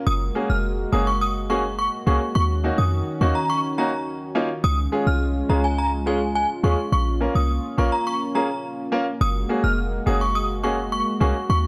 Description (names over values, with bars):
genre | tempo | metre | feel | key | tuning
dancehall | 105 BPM | 4/4 | straight | unclear | A4 = 442 Hz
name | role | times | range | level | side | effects
warm analog pad | sustained chords | 0.0-11.7 s | Eb3 to Gb4 | -31 LUFS | equal | chorus
synth chime | melody | 0.1-11.6 s | Ab5 to F6 | -28 LUFS | equal | ensemble chorus, tremolo, analog delay
short 808-style bass | bass | 0.1-11.7 s | F1 to F2 | -25 LUFS | equal | none
clear concert grand piano | accompaniment | 0.4-11.3 s | Ab3 to Bb4 | -28 LUFS | equal | none
room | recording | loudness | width
light reverb, digital ambience | dry, gritty hardware recording | -22 LUFS | mono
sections
0.0-11.7 A section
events
none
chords
0.1 Gbadd9; 2.4 Ebm7; 4.6 Db; 6.9 Bbm; 9.2 Gbadd9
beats
| 0.07 0.64 1.21 1.78 | 2.35 2.92 3.50 4.07 | 4.64 5.21 5.78 6.35 | 6.92 7.50 8.07 8.64 | 9.21 9.78 10.35 10.92 | 11.50